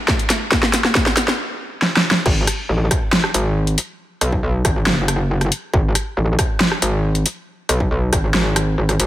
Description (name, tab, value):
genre	heavy wobble dubstep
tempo	138 BPM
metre	4/4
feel	half-time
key	G# phrygian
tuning	A4 = 443 Hz
part	dubstep drum kit	drums	0.1-9.1 s	crash cymbal, hi-hat, rim click, snare drum	-18 LUFS	equal	small room ambience
part	electronic kick drum	drums	0.1-8.2 s	none	-21 LUFS	equal	distortion, small room ambience
part	metallic wobble bass	bass	2.3-9.1 s	F#1 to B1	-18 LUFS	equal	chorus, overdrive
room	light reverb, digital ambience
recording	none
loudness	-16 LUFS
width	side -14 dB against mid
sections	0.0-2.3 A section; 2.3-9.1 B section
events	build-up 0.0-2.3; drum fill 0.0-1.4, 1.8-2.3; stop 1.4-2.3; drop 2.3-9.1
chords	none